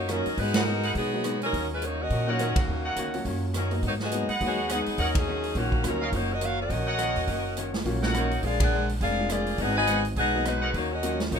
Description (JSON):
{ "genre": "jazz, big band swing", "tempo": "208 BPM", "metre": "4/4", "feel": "swing 59% on 8ths", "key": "Eb minor", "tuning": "A4 = 440 Hz", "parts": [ { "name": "warm saxophone section", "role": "melody", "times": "0.0-11.4 s", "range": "Eb3 to Ab5", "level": "-28 LUFS", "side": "left 1 dB", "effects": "none" }, { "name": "upright bass", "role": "bass", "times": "0.0-11.4 s", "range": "F1 to Cb3", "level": "-30 LUFS", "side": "equal", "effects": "none" }, { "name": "archtop guitar, miked and amplified", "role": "accompaniment", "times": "0.1-11.4 s", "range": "Ab2 to Gb4", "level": "-34 LUFS", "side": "left 2 dB", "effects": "none" }, { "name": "warm concert grand piano", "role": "accompaniment", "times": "0.1-11.4 s", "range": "Gb3 to F4", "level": "-34 LUFS", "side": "equal", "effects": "none" }, { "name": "swinging big-band drum kit", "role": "drums", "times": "0.1-11.4 s", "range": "hi-hat, kick drum, ride cymbal, rim click, snare drum", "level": "-31 LUFS", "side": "right 1 dB", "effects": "none" }, { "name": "brilliant trumpet section", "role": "stabs", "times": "0.5-10.7 s", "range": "Ab4 to Gb5", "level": "-31 LUFS", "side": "right 2 dB", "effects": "none" } ], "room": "moderate club reverb, RT60 0.5 s", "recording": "minimal, uncompressed stereo recording", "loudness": "-24 LUFS", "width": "side -7 dB against mid", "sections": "0.0-11.4 A section", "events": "band accent 0.5, 2.5, 5.1, 8.6", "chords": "0.4 Abm7; 1.5 Ebm7; 3.8 Abm7; 5.0 Ebm7; 8.4 Bb7; 9.6 Abm7; 10.7 Ebm7" }